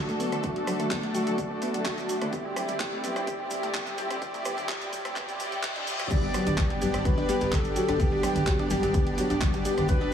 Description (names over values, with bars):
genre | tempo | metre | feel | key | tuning
progressive house | 127 BPM | 4/4 | straight | G major | A4 = 442 Hz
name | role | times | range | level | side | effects
muted studio string section | sustained chords | 0.0-10.1 s | B2 to A4 | -35 LUFS | left 1 dB | sidechain pumping
soft supersaw | stabs | 0.0-10.1 s | A3 to D5 | -31 LUFS | right 1 dB | sidechain pumping, dub echo
riser and reverse cymbal | sound effects | 1.7-6.1 s | none | -40 LUFS | left 1 dB | none
analog pluck | arpeggios | 0.1-10.1 s | G2 to D5 | -33 LUFS | left 1 dB | chorus, sidechain pumping, dub echo
house drum kit | drums | 0.1-10.0 s | crash cymbal, handclaps, hi-hat, rim click | -35 LUFS | equal | none
maracas | percussion | 0.1-10.0 s | none | -44 LUFS | right 5 dB | none
electronic kick drum | drums | 0.4-10.0 s | none | -28 LUFS | equal | none
woodblock and congas | percussion | 0.6-10.1 s | none | -37 LUFS | equal | sidechain pumping on perc
expressive synth lead | melody | 6.1-10.1 s | G4 to D5 | -32 LUFS | left 1 dB | wide subtle chorus, dub echo
round analog bass | bass | 6.2-10.1 s | G1 | -34 LUFS | equal | sidechain pumping
room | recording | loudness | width
light reverb | high-pass filter, small room ambience | -25 LUFS | side -8 dB against mid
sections
0.0-6.1 A section; 6.1-10.1 B section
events
build-up 0.0-6.1; filter sweep on synth pluck 0.0-6.1; filter sweep on supersaw synth 0.0-6.1; filter sweep 0.0-6.1; reverse cymbal 5.2-6.1; drop 6.1-10.1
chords
0.0 D; 2.3 Cadd9; 6.1 G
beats
| 0.44 0.91 1.38 1.86 | 2.33 2.80 3.27 3.75 | 4.22 4.69 5.16 5.63 | 6.11 6.58 7.05 7.53 | 8.00 8.47 8.94 9.41 | 9.89